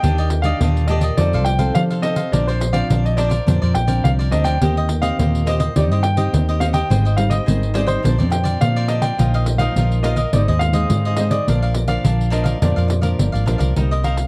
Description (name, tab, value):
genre	samba and choro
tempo	105 BPM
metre	4/4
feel	straight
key	unclear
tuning	A4 = 440 Hz
part	warm grand piano	melody	0.0-14.3 s	C5 to G5	-26 LUFS	equal	plate reverb, analog delay
part	cavaquinho	accompaniment	0.0-14.2 s	D4 to G5	-30 LUFS	equal	plate reverb
part	nylon-string guitar	accompaniment	0.0-14.3 s	Ab2 to A4	-27 LUFS	equal	none
part	fingered electric bass	bass	0.0-14.3 s	G1 to F3	-21 LUFS	equal	none
part	pandeiro	percussion	0.0-14.3 s	none	-25 LUFS	equal	none
room	light reverb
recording	dark, warm production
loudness	-18 LUFS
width	mono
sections	0.0-13.8 A section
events	none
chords	0.0 Ebmaj7; 1.2 F7; 2.3 Bbadd9; 4.6 Eb6; 5.8 Cm/Eb; 6.9 Abmaj7; 8.0 Bbadd9; 9.2 Ebsus2/Bb; 10.3 Ab; 11.5 Bb; 13.8 Cm7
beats	| 0.04 0.61 1.18 1.76 | 2.33 2.90 3.47 4.04 | 4.62 5.19 5.76 6.33 | 6.90 7.47 8.05 8.62 | 9.19 9.76 10.34 10.91 | 11.48 12.05 12.62 13.20 | 13.77